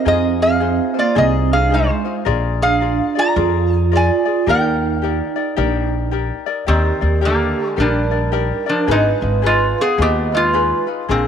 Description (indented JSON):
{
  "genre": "Hawaiian",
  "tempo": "109 BPM",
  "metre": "4/4",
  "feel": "swing 62% on 8ths",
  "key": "Eb major",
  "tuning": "A4 = 440 Hz",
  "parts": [
    { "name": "metal-body resonator slide guitar", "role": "melody", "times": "0.0-11.3 s", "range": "D3 to Bb5", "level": "-18 LUFS", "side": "equal", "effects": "none" },
    { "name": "vibraphone with soft mallets", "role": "second line", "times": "0.0-11.3 s", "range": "Ab3 to F5", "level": "-21 LUFS", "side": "right 12 dB", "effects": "none" },
    { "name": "ukulele", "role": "accompaniment", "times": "0.0-11.3 s", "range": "D4 to D5", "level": "-23 LUFS", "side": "left 11 dB", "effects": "none" },
    { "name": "upright bass", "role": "bass", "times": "0.1-11.3 s", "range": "Ab1 to F2", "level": "-19 LUFS", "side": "equal", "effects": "none" }
  ],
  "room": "moderate plate reverb, RT60 3.1 s",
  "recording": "1960s-style stereo with parts hard left and right",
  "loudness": "-14 LUFS",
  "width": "side -8 dB against mid",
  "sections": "0.0-6.7 A section; 6.7-11.3 B section",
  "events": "none",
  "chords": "0.1 Fm7; 2.3 Bb7; 4.5 Ebmaj7; 8.9 Abm6",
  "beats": "| 0.06 0.61 1.17 1.72 | 2.27 2.82 3.37 3.92 | 4.47 5.03 5.58 6.13 | 6.68 7.23 7.78 8.34 | 8.89 9.44 9.99 10.54 | 11.10"
}